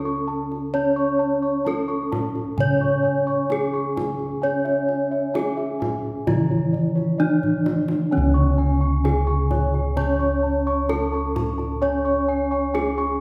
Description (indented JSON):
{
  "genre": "Javanese gamelan",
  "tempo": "65 BPM",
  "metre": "4/4",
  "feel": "straight",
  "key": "C# pelog",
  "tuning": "A4 = 442 Hz",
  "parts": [
    { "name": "gamelan-type bronze metallophone", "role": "melody", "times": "0.0-13.2 s", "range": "C#4 to C#5", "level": "-26 LUFS", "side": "equal", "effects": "none" },
    { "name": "gamelan-type bronze metallophone", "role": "accompaniment", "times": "0.0-13.2 s", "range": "C#3 to C#4", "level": "-28 LUFS", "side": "equal", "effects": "none" },
    { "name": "gamelan-type bossed gongs", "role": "arpeggios", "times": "0.0-13.2 s", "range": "C#5 to C#6", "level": "-32 LUFS", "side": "equal", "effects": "none" },
    { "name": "gamelan-type bossed gongs", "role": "bass", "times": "0.0-13.2 s", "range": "C#2 to C#5", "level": "-28 LUFS", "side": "equal", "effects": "none" },
    { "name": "kendang", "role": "percussion", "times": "0.5-13.0 s", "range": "none", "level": "-33 LUFS", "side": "equal", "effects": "none" },
    { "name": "gamelan-type bronze metallophone", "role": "arpeggios", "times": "8.1-13.2 s", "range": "C#5 to C#6", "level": "-36 LUFS", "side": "equal", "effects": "none" }
  ],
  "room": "wet recital hall reverb, RT60 1.8 s",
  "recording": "heard from further back in the room",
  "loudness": "-22 LUFS",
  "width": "mono",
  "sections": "0.0-8.1 A section; 8.1-13.2 A section",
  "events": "drum fill 7.4-8.1",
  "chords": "none",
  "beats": "| 0.74 1.67 2.59 3.51 | 4.43 5.36 6.28 7.20 | 8.13 9.05 9.97 10.90 | 11.82 12.74"
}